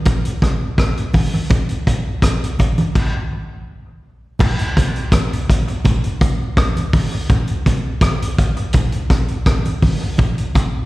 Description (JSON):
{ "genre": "reggae", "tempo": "83 BPM", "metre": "4/4", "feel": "straight", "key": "none", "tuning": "none", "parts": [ { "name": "vintage drum kit", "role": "drums", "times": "0.1-10.7 s", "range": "crash cymbal, hi-hat, kick drum, rim click", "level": "-16 LUFS", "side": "equal", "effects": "none" }, { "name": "congas", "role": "percussion", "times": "0.1-10.7 s", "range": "none", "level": "-21 LUFS", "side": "right 2 dB", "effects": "slapback echo" } ], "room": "light reverb", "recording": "live gig heard through the venue's PA, recital hall reverb", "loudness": "-15 LUFS", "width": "side -18 dB against mid", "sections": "0.0-4.4 A section; 4.4-10.9 B section", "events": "stop 3.0-4.4", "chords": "none", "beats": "0.07 0.79 | 1.51 2.24 2.96 3.68 | 4.41 5.13 5.85 6.58 | 7.30 8.02 8.74 9.47 | 10.19" }